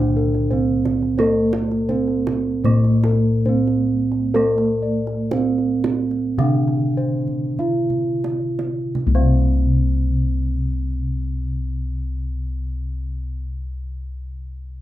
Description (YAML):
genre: Javanese gamelan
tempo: 41-88 BPM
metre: 4/4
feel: straight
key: unclear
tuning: A4 = 436 Hz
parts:
  - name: gamelan-type bronze metallophone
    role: melody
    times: 0.0-13.4 s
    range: Bb3-45c to F4-35c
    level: -22 LUFS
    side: right 4 dB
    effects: none
  - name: gamelan-type bronze metallophone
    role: accompaniment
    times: 0.0-13.4 s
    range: C3 to Bb3-45c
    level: -29 LUFS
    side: right 3 dB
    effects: none
  - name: gamelan-type bossed gongs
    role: arpeggios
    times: 0.0-13.4 s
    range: Bb4-45c to F5-35c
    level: -30 LUFS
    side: left 3 dB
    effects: none
  - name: gamelan-type bossed gongs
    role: bass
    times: 0.0-13.3 s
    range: C2 to Bb4-45c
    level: -21 LUFS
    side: left 2 dB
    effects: none
  - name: kendang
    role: percussion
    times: 0.0-9.6 s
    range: none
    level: -30 LUFS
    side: right 5 dB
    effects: none
room: little or no reverb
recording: rough home demo mix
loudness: -18 LUFS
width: side -13 dB against mid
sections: 0.0-8.9 A section; 8.9-14.8 B section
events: slowing down 1.2-8.9; drum fill 7.3-8.9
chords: none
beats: 0.51 | 1.19 1.89 2.64 3.46 | 4.34 5.31 6.39 7.59 | 8.95 10.40 11.86 13.31